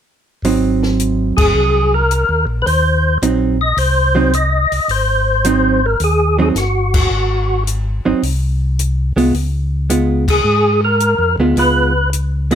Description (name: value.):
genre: soul jazz organ trio.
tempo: 108 BPM.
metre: 4/4.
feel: swing 69% on 8ths.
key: Ab mixolydian.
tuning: A4 = 440 Hz.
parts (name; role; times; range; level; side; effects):
vintage hollow-body jazz guitar; accompaniment; 0.4-12.6 s; Gb3 to F4; -16 LUFS; right 4 dB; none.
mellow tonewheel organ; bass; 0.4-12.6 s; G1 to Ab2; -17 LUFS; left 1 dB; slow rotary speaker.
compact cocktail drum kit; drums; 0.4-12.6 s; crash cymbal, hi-hat, kick drum, snare drum; -22 LUFS; left 2 dB; none.
percussive tonewheel organ; melody; 1.4-12.6 s; Gb4 to Eb5; -15 LUFS; equal; slow rotary speaker, overdrive, chorus vibrato.
room: light reverb.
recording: none.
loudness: -13 LUFS.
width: side -9 dB against mid.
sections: 0.4-12.6 A section.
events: band accent 1.3, 6.8, 10.2.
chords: 0.4 Ab7; 9.3 Db7.